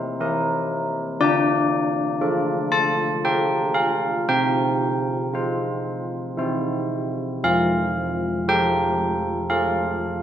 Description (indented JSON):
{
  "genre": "classical, tune for church bells",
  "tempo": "58 BPM",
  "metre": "3/4",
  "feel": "straight",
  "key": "F major",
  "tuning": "A4 = 440 Hz",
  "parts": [
    { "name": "old church bells", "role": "solo", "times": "0.0-10.2 s", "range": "F3 to A5", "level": "-20 LUFS", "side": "equal", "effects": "none" }
  ],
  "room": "wet recital hall reverb, RT60 1.6 s",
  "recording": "none",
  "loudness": "-20 LUFS",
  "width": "side -10 dB against mid",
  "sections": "0.0-10.2 A section",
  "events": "none",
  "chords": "0.0 C7; 1.2 Dm; 4.3 Csus4; 6.4 C; 7.4 F",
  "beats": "0.18 | 1.19 2.20 3.22 | 4.26 5.31 6.37 | 7.43 8.49 9.52"
}